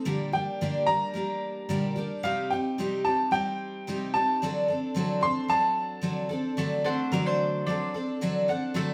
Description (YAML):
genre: acoustic folk duo or small band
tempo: 110 BPM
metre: 4/4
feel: straight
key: unclear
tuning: A4 = 440 Hz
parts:
  - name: picked twelve-string acoustic guitar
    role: accompaniment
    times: 0.0-8.9 s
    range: Bb2 to A4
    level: -30 LUFS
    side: equal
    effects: none
  - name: bright upright piano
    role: melody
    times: 0.3-6.3 s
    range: F5 to C6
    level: -30 LUFS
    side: equal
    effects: none
  - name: mandolin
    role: arpeggios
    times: 6.6-8.9 s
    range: A3 to F#5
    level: -35 LUFS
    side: equal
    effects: none
room: wet studio reverb, RT60 0.7 s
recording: band playing live in one room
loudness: -28 LUFS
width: mono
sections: 0.0-6.6 A section; 6.6-8.9 B section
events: none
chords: 0.1 Gm/Bb; 2.2 Cm; 4.4 D7